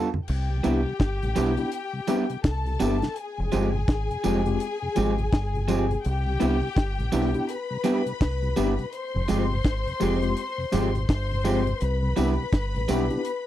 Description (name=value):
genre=lovers rock reggae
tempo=83 BPM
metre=4/4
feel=swing 61% on 16ths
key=C major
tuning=A4 = 440 Hz
part: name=mellow tine electric piano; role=accompaniment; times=0.0-13.2 s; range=Ab3 to G4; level=-28 LUFS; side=left 3 dB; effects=medium stereo tremolo, slapback echo
part: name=mellow tonewheel organ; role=accompaniment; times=0.0-13.2 s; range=F2 to G4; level=-33 LUFS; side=left 2 dB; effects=none
part: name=electric guitar through a small old amp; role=stabs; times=0.0-13.1 s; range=F3 to G4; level=-26 LUFS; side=right 5 dB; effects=none
part: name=deep reggae drum kit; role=drums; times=0.1-13.5 s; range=crash cymbal, hi-hat, kick drum, snare drum, toms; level=-24 LUFS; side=equal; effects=none
part: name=warm studio string section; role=second line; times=0.3-13.5 s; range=G4 to C6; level=-31 LUFS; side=left 4 dB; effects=none
part: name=deep dub fingered electric bass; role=bass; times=0.3-13.1 s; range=F1 to C2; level=-26 LUFS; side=equal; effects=tube saturation
part: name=tambourine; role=percussion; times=0.6-13.1 s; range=none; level=-43 LUFS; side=right 2 dB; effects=slapback echo
room=little or no reverb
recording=dry, close 1970s-style studio recording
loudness=-23 LUFS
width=side -12 dB against mid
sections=0.3-13.5 A section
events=drum fill 0.0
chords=0.3 Cmaj7; 3.2 Fmadd9; 6.0 Cmaj7; 8.9 Fmadd9; 11.8 Cmaj7